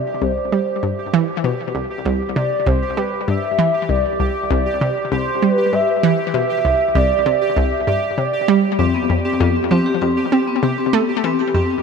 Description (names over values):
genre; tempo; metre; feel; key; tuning
ambient, sequencer-driven space music; 98 BPM; 4/4; straight; C major; A4 = 440 Hz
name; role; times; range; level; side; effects
expressive portamento lead; melody; 0.0-8.8 s; B4 to E5; -21 LUFS; equal; wide subtle chorus, vintage 12-bit sampler grit, ping-pong delay
pulsing gated texture; texture; 0.0-11.8 s; G4; -24 LUFS; right 3 dB; chorus, built-in reverb
analog pluck; riff; 0.2-11.6 s; C2 to C4; -19 LUFS; equal; chorus, ping-pong delay
vibraphone with medium mallets; arpeggios; 8.8-11.7 s; B3 to G4; -20 LUFS; left 5 dB; auto-pan, ping-pong delay
room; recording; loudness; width
moderate plate reverb, RT60 3.9 s; none; -16 LUFS; side -5 dB against mid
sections
0.0-11.8 A section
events
none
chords
0.0 C; 8.8 F5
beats
0.22 0.83 | 1.44 2.06 2.67 3.28 | 3.89 4.50 5.12 5.73 | 6.34 6.95 7.57 8.18 | 8.79 9.40 10.01 10.63 | 11.24